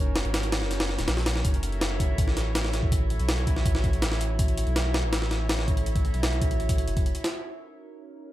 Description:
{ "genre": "drum and bass, jungle", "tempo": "163 BPM", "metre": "4/4", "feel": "straight", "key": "unclear", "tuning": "A4 = 440 Hz", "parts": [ { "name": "warbly tape-like pad", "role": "sustained chords", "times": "0.0-8.3 s", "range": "Db4 to Fb5", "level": "-34 LUFS", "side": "right 1 dB", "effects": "chorus, built-in reverb, vintage 12-bit sampler grit" }, { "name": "soft dub sub bass", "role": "bass", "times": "0.0-7.1 s", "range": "Eb1 to Cb2", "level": "-28 LUFS", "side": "equal", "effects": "none" }, { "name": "breakbeat sampler-style drum kit", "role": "drums", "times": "0.2-7.3 s", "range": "hi-hat, kick drum, snare drum", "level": "-26 LUFS", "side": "equal", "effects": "none" } ], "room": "little or no reverb", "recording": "none", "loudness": "-23 LUFS", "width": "side -15 dB against mid", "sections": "0.0-7.3 A section", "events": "drop 0.0-7.3", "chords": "0.0 Ebm7; 1.4 Gbm7; 7.3 Ebm7" }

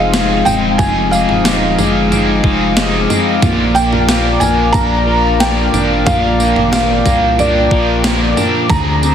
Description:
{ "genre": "dream pop", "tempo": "91 BPM", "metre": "4/4", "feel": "straight", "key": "unclear", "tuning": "A4 = 440 Hz", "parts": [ { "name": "felt-muted upright piano", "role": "melody", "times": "0.0-9.1 s", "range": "D5 to Bb5", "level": "-16 LUFS", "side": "right 1 dB", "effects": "ping-pong delay" }, { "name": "raw garage guitar", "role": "accompaniment", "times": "0.0-9.1 s", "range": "Bb2 to Bb4", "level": "-19 LUFS", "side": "right 3 dB", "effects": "overdrive, harmonic tremolo, lush chorus" }, { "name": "warm analog pad", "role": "sustained chords", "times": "0.0-9.1 s", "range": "Eb4 to D6", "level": "-20 LUFS", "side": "left 2 dB", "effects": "chorus" }, { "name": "clean electric guitar", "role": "arpeggios", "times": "0.0-9.1 s", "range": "F2 to Ab4", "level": "-17 LUFS", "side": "left 3 dB", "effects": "wide subtle chorus, ping-pong delay" }, { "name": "saturated sub bass", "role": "bass", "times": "0.0-9.1 s", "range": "Eb1 to D2", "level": "-19 LUFS", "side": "equal", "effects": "none" }, { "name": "gated 80s digital drum machine", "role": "drums", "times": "0.1-9.1 s", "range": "kick drum, snare drum, tambourine, toms", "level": "-17 LUFS", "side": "right 1 dB", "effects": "gated reverb, gated reverb snare" } ], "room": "moderate plate reverb, RT60 1.6 s, digital ambience", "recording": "heavily compressed radio sound, multiband compression", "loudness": "-11 LUFS", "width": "side -8 dB against mid", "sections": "0.0-9.1 A section", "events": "none", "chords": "0.0 Fm7; 3.4 Bb" }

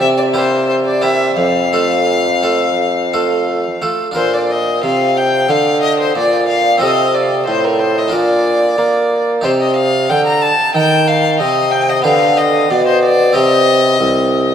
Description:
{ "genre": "classical, baroque-style sonata movement with continuo", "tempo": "91 BPM", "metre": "4/4", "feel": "rubato", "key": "F major, Bb major from 4.2 s", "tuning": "A4 = 442 Hz", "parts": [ { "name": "warm violin", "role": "melody", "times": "0.0-14.5 s", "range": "Bb4 to Bb5", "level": "-15 LUFS", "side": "left 3 dB", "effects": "none" }, { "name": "harpsichord", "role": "accompaniment", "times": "0.0-14.5 s", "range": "C2 to Bb4", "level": "-18 LUFS", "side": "right 1 dB", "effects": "none" }, { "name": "warm bassoon", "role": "bass", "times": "0.0-14.5 s", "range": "C2 to Bb3", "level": "-16 LUFS", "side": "right 2 dB", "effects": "none" } ], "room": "wet cathedral reverb, RT60 5.1 s", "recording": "in a vast, echoing space", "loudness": "-11 LUFS", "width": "side -8 dB against mid", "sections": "0.0-4.2 A section; 4.2-14.5 A section", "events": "none", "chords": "0.0 C7; 1.4 F; 4.2 Bb; 6.8 F/C; 8.1 Bb; 9.4 Cm; 12.0 G/D; 13.4 Cm" }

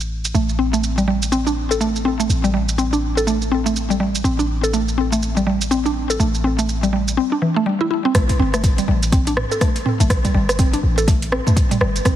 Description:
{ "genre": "afro house", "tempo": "123 BPM", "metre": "4/4", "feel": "swing 60% on 16ths", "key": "A minor", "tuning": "A4 = 440 Hz", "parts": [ { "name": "warm 808-style bass", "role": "bass", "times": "0.0-12.2 s", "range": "G1 to E2", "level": "-21 LUFS", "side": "equal", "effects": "sidechain pumping" }, { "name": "afro-pop drum kit", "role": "drums", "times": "0.0-12.2 s", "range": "hi-hat, rim click, shaker, toms", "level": "-24 LUFS", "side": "right 1 dB", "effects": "studio reverb" }, { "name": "mallet-like synth pluck", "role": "arpeggios", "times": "0.3-12.2 s", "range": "E3 to A4", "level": "-19 LUFS", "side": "equal", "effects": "chorus, sidechain pumping, ping-pong delay" }, { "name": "electronic kick drum", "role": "drums", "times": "8.1-12.2 s", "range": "none", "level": "-17 LUFS", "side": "equal", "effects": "studio reverb" } ], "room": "light reverb, digital ambience", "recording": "heavily compressed radio sound", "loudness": "-16 LUFS", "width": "side -11 dB against mid", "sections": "0.0-8.1 A section; 8.1-12.2 B section", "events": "drop 8.1-12.2", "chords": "0.0 Am7" }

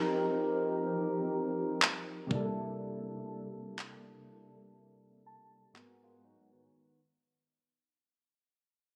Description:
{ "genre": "contemporary R&B", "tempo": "61 BPM", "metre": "4/4", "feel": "swing 58% on 16ths", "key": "unclear", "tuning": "A4 = 440 Hz", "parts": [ { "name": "soft electric-piano-like synth keys", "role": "accompaniment", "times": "0.0-6.8 s", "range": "Ab2 to A5", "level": "-36 LUFS", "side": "equal", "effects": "chorus, phaser, low-pass filter" }, { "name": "smooth R&B drum kit", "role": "drums", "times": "1.8-6.0 s", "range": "handclaps, kick drum", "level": "-33 LUFS", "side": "equal", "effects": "none" }, { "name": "direct-recorded clean electric guitar", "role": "arpeggios", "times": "5.8-7.0 s", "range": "Eb3 to Gb4", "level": "-75 LUFS", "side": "equal", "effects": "low-pass filter, digital delay" } ], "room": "light reverb, digital ambience", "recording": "recorded on a phone in the room, club reverb", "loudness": "-34 LUFS", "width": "mono", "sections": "0.0-6.7 A section", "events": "fade-out 0.0-6.7; break 2.8-6.7; synth keys fill 4.8-6.7", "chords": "0.0 F9sus4; 2.3 C13; 5.7 Abm9" }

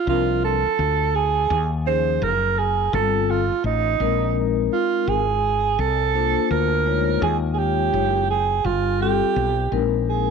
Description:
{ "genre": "hip hop, jazz-hop", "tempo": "84 BPM", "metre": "4/4", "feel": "swing 65% on 16ths", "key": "unclear", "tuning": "A4 = 441 Hz", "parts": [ { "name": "breathy alto saxophone", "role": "melody", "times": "0.0-10.3 s", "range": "Eb4 to C5", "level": "-21 LUFS", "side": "right 9 dB", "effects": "none" }, { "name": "vibraphone with soft mallets", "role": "accompaniment", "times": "0.1-10.3 s", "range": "F3 to Db5", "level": "-24 LUFS", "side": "left 16 dB", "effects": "none" }, { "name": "woody fretless electric bass", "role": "bass", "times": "0.1-10.3 s", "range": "Gb1 to Eb2", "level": "-24 LUFS", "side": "left 3 dB", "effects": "none" } ], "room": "moderate spring reverb, RT60 2.2 s", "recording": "1960s-style stereo with parts hard left and right", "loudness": "-18 LUFS", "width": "side -6 dB against mid", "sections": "0.1-10.3 A section", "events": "none", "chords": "0.1 C9sus4; 1.5 Eb9sus4; 2.9 G9sus4; 4.0 Bb9sus4; 5.8 C9sus4; 7.2 Eb9sus4; 8.6 G9sus4; 9.7 Bb9sus4" }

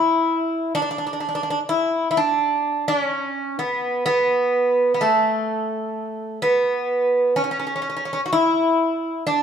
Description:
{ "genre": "greek folk", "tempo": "127 BPM (eighths)", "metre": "9/8", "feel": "straight", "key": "unclear", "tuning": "A4 = 437 Hz", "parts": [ { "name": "Greek bouzouki", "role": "solo", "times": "0.0-9.4 s", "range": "A3 to F#4", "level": "-19 LUFS", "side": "equal", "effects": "none" } ], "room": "wet stone room reverb, RT60 1.2 s", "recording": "band playing live in one room", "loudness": "-19 LUFS", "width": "side -8 dB against mid", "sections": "0.0-9.4 A section", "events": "none", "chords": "none" }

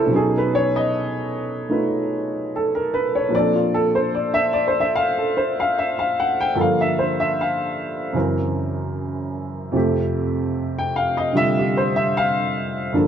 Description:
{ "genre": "jazz ballad", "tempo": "75 BPM", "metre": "4/4", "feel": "swing 67% on 8ths", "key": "unclear", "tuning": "A4 = 441 Hz", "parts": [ { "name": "clear baby grand piano", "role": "solo", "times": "0.0-13.1 s", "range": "F2 to G5", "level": "-19 LUFS", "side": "equal", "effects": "none" } ], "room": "moderate large studio reverb, RT60 1.4 s", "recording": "none", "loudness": "-19 LUFS", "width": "side -8 dB against mid", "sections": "0.0-13.1 A section", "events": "none", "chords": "0.1 B9; 3.3 Bbmaj9; 6.5 Gm9; 8.1 Gb7#11; 9.7 Fadd9" }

